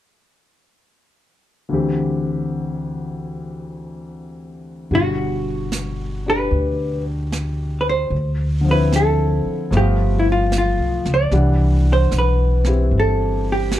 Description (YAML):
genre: jazz ballad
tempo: 75 BPM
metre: 4/4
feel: swing 68% on 8ths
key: G major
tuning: A4 = 440 Hz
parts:
  - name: clear grand piano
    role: accompaniment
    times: 1.7-13.8 s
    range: D2 to F#5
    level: -23 LUFS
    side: left 2 dB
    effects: none
  - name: vintage hollow-body jazz guitar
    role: melody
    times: 4.9-13.8 s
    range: E4 to D5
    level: -21 LUFS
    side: equal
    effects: none
  - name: upright bass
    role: bass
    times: 4.9-13.8 s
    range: G1 to D2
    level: -19 LUFS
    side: equal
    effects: none
  - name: jazz brush drum kit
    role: drums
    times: 4.9-13.8 s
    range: brushed snare drum, hi-hat, snare drum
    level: -30 LUFS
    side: right 4 dB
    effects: none
room: little or no reverb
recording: dark, warm production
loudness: -17 LUFS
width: side -12 dB against mid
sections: 1.7-4.9 A section; 4.9-13.8 B section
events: none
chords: 1.7 D7sus4; 4.9 Gmaj7; 8.1 Dm9; 9.7 G9; 11.3 Cmaj9#11